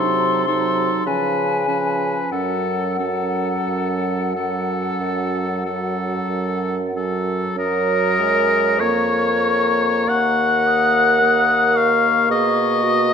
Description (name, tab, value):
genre	classical, slow romantic movement for wind quintet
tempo	44-56 BPM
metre	4/4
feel	rubato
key	F# minor, F# major from 7.6 s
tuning	A4 = 440 Hz
part	hollow concert flute	melody	0.0-13.1 s	F#5 to D#6	-25 LUFS	left 7 dB	none
part	clear oboe	second line	0.0-13.1 s	A4 to F#5	-20 LUFS	left 2 dB	none
part	warm French horn	accompaniment	0.0-13.1 s	E#3 to A#3	-26 LUFS	right 1 dB	none
part	warm clarinet	accompaniment	0.0-13.1 s	C#4 to C#5	-26 LUFS	right 6 dB	none
part	mellow bassoon	bass	0.0-13.1 s	D#2 to C#3	-24 LUFS	right 2 dB	none
room	wet recital hall reverb, RT60 1.5 s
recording	none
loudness	-16 LUFS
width	side -7 dB against mid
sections	0.0-7.6 A section; 7.6-13.1 B section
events	none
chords	0.0 Cdim7; 1.1 C#7; 2.3 F#m; 7.6 F#; 10.1 D#m7; 12.3 G#m/B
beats	1.07 | 2.32 3.69 5.01 6.30 | 7.58 8.79 10.08 11.21 | 12.30